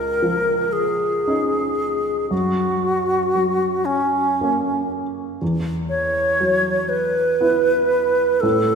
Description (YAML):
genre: classical, impressionist duo for alto flute and grand piano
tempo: 58 BPM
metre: 3/4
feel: rubato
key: unclear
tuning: A4 = 440 Hz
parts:
  - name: bright alto flute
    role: melody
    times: 0.0-8.8 s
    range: Db4 to Db5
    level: -18 LUFS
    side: right 1 dB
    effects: none
  - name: warm baby grand piano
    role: accompaniment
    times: 0.0-8.8 s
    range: Db2 to E4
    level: -24 LUFS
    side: equal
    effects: none
room: wet concert hall reverb, RT60 2.0 s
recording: minimal, uncompressed stereo recording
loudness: -18 LUFS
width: side -6 dB against mid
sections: 0.0-8.8 A section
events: none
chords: 0.0 Dbadd9; 2.3 Gb; 5.4 Esus2